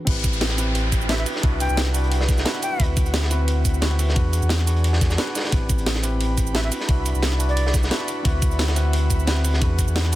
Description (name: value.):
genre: liquid drum and bass.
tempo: 176 BPM.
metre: 4/4.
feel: straight.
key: A dorian.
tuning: A4 = 441 Hz.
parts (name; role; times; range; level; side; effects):
barky tine electric piano; accompaniment; 0.0-10.2 s; C4 to B4; -29 LUFS; equal; overdrive, digital delay.
airy breathy pad; sustained chords; 0.3-10.2 s; C4 to B5; -32 LUFS; right 2 dB; chorus.
sub bass with octave; bass; 0.1-10.2 s; A1 to E2; -21 LUFS; equal; none.
crunchy breakbeat drum kit; drums; 0.1-10.2 s; hi-hat, snare drum; -30 LUFS; equal; high-pass filter on hats, low-pass filter on hats, high-pass filter on snare, low-pass filter on snare, high-pass filter on room, low-pass filter on room.
drum and bass drum kit; drums; 0.1-10.2 s; crash cymbal, hi-hat, ride cymbal, shaker, snare drum; -28 LUFS; right 1 dB; none.
electronic kick drum; drums; 0.1-9.9 s; none; -21 LUFS; equal; none.
downlifter; sound effects; 0.1-2.8 s; none; -32 LUFS; equal; none.
breathy bright concert flute; melody; 1.1-2.8, 6.5-7.7 s; D5 to G5; -32 LUFS; left 1 dB; ping-pong delay.
room: studio reverb.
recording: dense, heavily limited modern master.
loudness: -18 LUFS.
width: side -15 dB against mid.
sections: 0.1-10.2 A section.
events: drop 0.1-10.2.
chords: 0.1 Am9; 1.3 Cmaj9#11; 2.8 D13; 4.2 E9; 5.5 Am9; 6.7 Cmaj9#11; 8.3 D13; 9.6 E9.